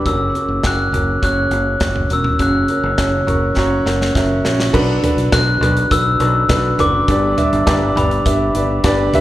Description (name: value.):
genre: piano-driven pop.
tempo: 102 BPM.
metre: 4/4.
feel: straight.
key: B minor.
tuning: A4 = 439 Hz.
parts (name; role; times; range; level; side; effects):
warm upright piano; accompaniment; 0.0-9.2 s; G2 to C#6; -18 LUFS; right 1 dB; slapback echo.
glockenspiel with soft plastic mallets; melody; 0.1-8.5 s; B5 to F#6; -20 LUFS; left 2 dB; slapback echo.
fingered electric bass; bass; 0.1-9.2 s; E1 to C#2; -20 LUFS; equal; none.
modern studio drum kit; drums; 0.1-9.2 s; crash cymbal, hi-hat, kick drum, snare drum, toms; -20 LUFS; equal; none.
room: light reverb, studio reverb.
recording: live gig heard through the venue's PA, club reverb.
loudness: -13 LUFS.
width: side -14 dB against mid.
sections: 0.0-4.7 A section; 4.7-9.2 B section.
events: upright piano fill 3.0-4.7; drum fill 3.6-4.7.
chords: 0.1 F#; 4.7 Bm7; 7.1 G.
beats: | 0.05 0.64 1.23 1.81 | 2.40 2.98 3.57 4.16 | 4.74 5.33 5.91 6.50 | 7.08 7.67 8.25 8.84.